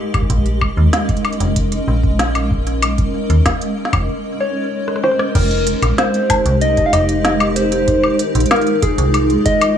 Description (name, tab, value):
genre	IDM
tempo	95 BPM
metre	4/4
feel	straight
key	F minor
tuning	A4 = 440 Hz
part	granular cloud pad	sustained chords	0.0-9.8 s	Ab3 to Eb5	-19 LUFS	right 1 dB	built-in reverb
part	electronic kick drum	drums	0.1-9.6 s	none	-20 LUFS	equal	none
part	organic electronic drum kit	drums	0.1-9.7 s	crash cymbal, hi-hat, rim click, snare drum, woodblock	-20 LUFS	left 1 dB	digital delay
part	metallic FM bass	bass	0.3-9.4 s	F1 to Eb2	-17 LUFS	equal	none
part	soft struck synth lead	melody	4.4-9.8 s	Ab4 to F5	-17 LUFS	left 1 dB	chorus, digital delay
room	moderate echo chamber reverb, RT60 1.8 s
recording	small room ambience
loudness	-13 LUFS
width	side -9 dB against mid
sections	0.0-5.4 A section; 5.4-9.8 B section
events	break 4.1-5.4; drum fill 4.9-5.4; band accent 5.2-5.5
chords	0.0 Bbm7; 5.4 Fm11